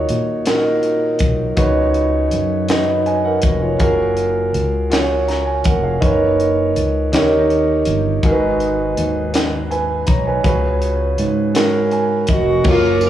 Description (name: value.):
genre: slow gospel.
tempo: 54 BPM (dotted quarters).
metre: 6/8.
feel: straight.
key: unclear.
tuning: A4 = 441 Hz.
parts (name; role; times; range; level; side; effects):
warm concert grand piano; accompaniment; 0.0-13.1 s; G#2 to A#5; -17 LUFS; right 1 dB; slapback echo.
fingered electric bass; bass; 0.0-13.1 s; E#1 to A#2; -21 LUFS; equal; none.
tight funk drum kit; drums; 0.1-13.1 s; crash cymbal, hi-hat, kick drum, ride cymbal, snare drum; -20 LUFS; equal; none.
clear saxophone section; melody; 12.3-13.1 s; A#3 to A#4; -16 LUFS; right 1 dB; slapback echo.
tambourine; percussion; 13.0-13.1 s; none; -30 LUFS; right 2 dB; none.
room: light reverb, small room ambience.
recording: live gig heard through the venue's PA, club reverb.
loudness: -14 LUFS.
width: side -11 dB against mid.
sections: 0.0-12.7 A section.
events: grand piano fill 11.6-12.7.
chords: 0.0 D#m9; 1.6 C#9sus4; 3.8 F#maj9; 6.0 Bmaj9/F#; 7.1 D#7; 8.2 G#m7; 10.4 C#7sus4.